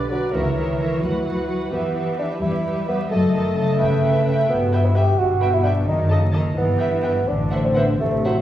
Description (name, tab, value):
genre	quick classical-period movement for symphony orchestra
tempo	86 BPM (dotted quarters)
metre	6/8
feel	rubato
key	E minor from 4.5 s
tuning	A4 = 440 Hz
part	muted studio violin section	melody	0.0-8.3 s	D5 to A5	-34 LUFS	equal	none
part	muted studio violin section	second line	0.0-8.3 s	B4 to E5	-29 LUFS	right 1 dB	none
part	muted studio viola section	accompaniment	0.0-8.3 s	F#4 to C5	-32 LUFS	equal	none
part	muted studio cello section	bass	0.0-8.4 s	B2 to G3	-24 LUFS	equal	none
part	muted studio double bass section	bass	0.0-8.4 s	F#1 to E2	-23 LUFS	equal	none
part	mellow bassoon	accompaniment	0.1-8.4 s	E3 to G4	-22 LUFS	equal	none
room	wet recital hall reverb, RT60 1.7 s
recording	recorded in a church or concert hall, vinyl crackle, studio reverb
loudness	-18 LUFS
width	side -12 dB against mid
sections	0.0-8.4 A section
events	none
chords	0.3 A#dim/C#; 1.0 Bm/D; 1.7 Em; 3.1 D#dim/F#; 3.8 Em/G; 5.9 D#dim/F#; 6.6 Em/G; 7.3 F#m7b5/A